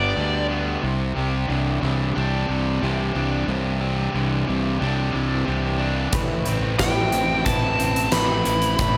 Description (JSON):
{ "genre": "classic rock", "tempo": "90 BPM", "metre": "4/4", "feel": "straight", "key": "unclear", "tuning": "A4 = 440 Hz", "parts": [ { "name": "nasal lead guitar with a parked wah", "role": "melody", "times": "0.0-0.5, 6.8-9.0 s", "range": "D5 to B5", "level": "-26 LUFS", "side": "equal", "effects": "overdrive, slapback echo" }, { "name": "cranked stack guitar", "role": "riff", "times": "0.0-9.0 s", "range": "A2 to E4", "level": "-29 LUFS", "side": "equal", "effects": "overdrive, slapback echo" }, { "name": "crunchy overdriven guitar", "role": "riff", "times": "0.0-9.0 s", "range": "A2 to B4", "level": "-30 LUFS", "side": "equal", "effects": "slapback echo" }, { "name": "fuzz fingered electric bass", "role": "bass", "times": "0.0-9.0 s", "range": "G1 to D2", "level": "-27 LUFS", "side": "equal", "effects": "overdrive" }, { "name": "picked acoustic archtop guitar", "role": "accompaniment", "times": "6.1-9.0 s", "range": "A2 to B4", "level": "-34 LUFS", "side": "equal", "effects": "slapback echo" }, { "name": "huge arena drum kit", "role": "drums", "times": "6.1-8.9 s", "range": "hi-hat, kick drum, snare drum", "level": "-26 LUFS", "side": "equal", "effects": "none" } ], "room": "moderate lush hall reverb, RT60 1.9 s, small room reverb", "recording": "big arena sound", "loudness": "-22 LUFS", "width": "mono", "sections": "0.0-9.0 A section", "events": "none", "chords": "0.0 G; 0.8 Cadd9; 6.1 Amadd9" }